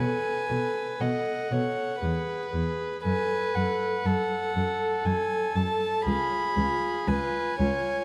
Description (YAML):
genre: classical, slow romantic movement for string quartet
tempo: 59 BPM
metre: 3/4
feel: rubato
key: unclear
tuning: A4 = 440 Hz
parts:
  - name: warm violin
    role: melody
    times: 0.0-8.0 s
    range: F#5 to B5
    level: -34 LUFS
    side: equal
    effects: none
  - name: warm violin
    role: second line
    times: 0.0-8.0 s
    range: G#4 to D#5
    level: -34 LUFS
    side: equal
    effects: none
  - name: dark viola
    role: accompaniment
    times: 0.0-8.0 s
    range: E#4 to A4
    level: -34 LUFS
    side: equal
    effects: none
  - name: dark cello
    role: bass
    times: 0.0-7.7 s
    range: C#2 to B2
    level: -32 LUFS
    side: equal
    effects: none
room: moderate concert hall reverb, RT60 1.8 s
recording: vinyl crackle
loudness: -28 LUFS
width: mono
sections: 0.0-8.0 A section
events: none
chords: 0.0 B5; 2.0 E; 3.0 F#m; 6.1 C#7